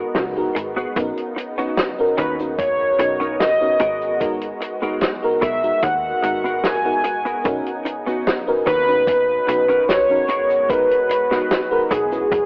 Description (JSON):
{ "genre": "vaporwave", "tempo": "74 BPM", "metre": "4/4", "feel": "straight", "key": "G# minor", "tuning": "A4 = 440 Hz", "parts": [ { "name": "warm velvety synth lead", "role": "melody", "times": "0.0-12.5 s", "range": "G#4 to G#5", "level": "-21 LUFS", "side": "equal", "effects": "chorus, tape echo" }, { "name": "FM electric piano with soft pad layer", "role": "accompaniment", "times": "0.0-12.5 s", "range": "G#3 to B4", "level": "-26 LUFS", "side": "equal", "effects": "analog chorus, analog delay" }, { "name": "lush unison pad", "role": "sustained chords", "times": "0.0-12.5 s", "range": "C#3 to F#4", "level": "-33 LUFS", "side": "equal", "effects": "chorus" }, { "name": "clean electric guitar", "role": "riff", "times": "0.0-12.1 s", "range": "B3 to B4", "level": "-31 LUFS", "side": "equal", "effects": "analog chorus, analog delay" }, { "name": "slap-like FM bass", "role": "bass", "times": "0.0-12.5 s", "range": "F#1 to D#2", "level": "-31 LUFS", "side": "equal", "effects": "none" }, { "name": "warm soul drum kit", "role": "drums", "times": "0.1-12.5 s", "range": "cabasa, hi-hat, snare drum", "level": "-26 LUFS", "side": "equal", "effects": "vintage 12-bit sampler grit" }, { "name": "electronic kick drum", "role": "drums", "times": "1.0-12.5 s", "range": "none", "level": "-33 LUFS", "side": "equal", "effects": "vintage 12-bit sampler grit" } ], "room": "light reverb, small room ambience", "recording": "worn, warbling old tape, cassette tape, warbly pitch drift, telephone sound", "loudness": "-20 LUFS", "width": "mono", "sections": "0.0-12.5 A section", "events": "none", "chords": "0.0 G#m9; 1.0 Bmaj9; 3.8 G#m9; 7.5 Bmaj9; 10.3 G#m9" }